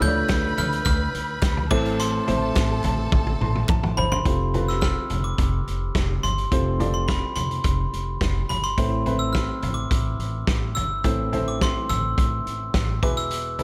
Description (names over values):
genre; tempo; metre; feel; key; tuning
piano-driven pop; 106 BPM; 4/4; straight; unclear; A4 = 440 Hz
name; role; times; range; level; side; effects
glockenspiel with brass mallets; melody; 0.0-13.6 s; B5 to G6; -31 LUFS; equal; none
warm studio violin section; second line; 0.0-4.2 s; A4 to B5; -34 LUFS; equal; none
clear upright piano; accompaniment; 0.0-13.6 s; A2 to C6; -31 LUFS; equal; none
upright bass; bass; 0.0-13.6 s; E1 to D2; -29 LUFS; equal; none
loose indie drum kit; drums; 0.0-13.6 s; crash cymbal, hi-hat, kick drum, snare drum, toms; -27 LUFS; equal; none
group handclap; percussion; 0.3-3.8 s; none; -39 LUFS; equal; none
room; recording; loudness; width
studio ambience; none; -23 LUFS; mono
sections
0.0-4.3 A section; 4.3-13.6 B section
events
drum fill 3.1-4.3; upright piano fill 3.1-4.3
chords
0.0 Dm; 1.7 Am; 4.3 F; 8.8 Am; 13.0 E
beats
0.30 0.86 1.43 | 1.99 2.56 3.12 3.69 | 4.26 4.82 5.39 5.96 | 6.52 7.09 7.65 8.22 | 8.78 9.35 9.92 10.48 | 11.05 11.61 12.18 12.74 | 13.31